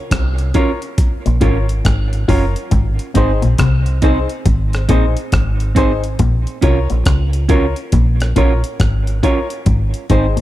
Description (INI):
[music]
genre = roots reggae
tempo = 69 BPM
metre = 4/4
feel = swing 63% on 16ths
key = Ab mixolydian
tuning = A4 = 440 Hz
[part]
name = electric guitar with an envelope filter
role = riff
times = 0.1-10.4 s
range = Gb2 to Db3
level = -22 LUFS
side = left 4 dB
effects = none
[part]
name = deep dub fingered electric bass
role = bass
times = 0.1-10.4 s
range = Gb1 to Db2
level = -16 LUFS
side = equal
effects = none
[part]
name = breakbeat sampler-style drum kit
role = drums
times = 0.1-10.4 s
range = hi-hat, kick drum, rim click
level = -17 LUFS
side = equal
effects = none
[part]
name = semi-hollow electric guitar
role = accompaniment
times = 0.5-10.3 s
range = C4 to Db5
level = -22 LUFS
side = right 6 dB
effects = tape echo
[part]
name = warm upright piano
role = stabs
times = 0.5-10.3 s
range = Eb4 to Db5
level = -22 LUFS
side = left 4 dB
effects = none
[sound]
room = little or no reverb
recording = dark, warm production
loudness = -13 LUFS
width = side -14 dB against mid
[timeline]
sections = 0.0-2.7 A section; 2.7-10.4 B section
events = none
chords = 0.0 Bbm; 2.7 Ab; 6.2 Bbm; 9.7 Ab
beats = 0.11 0.98 1.85 | 2.72 3.59 4.46 5.33 | 6.20 7.07 7.93 8.80 | 9.67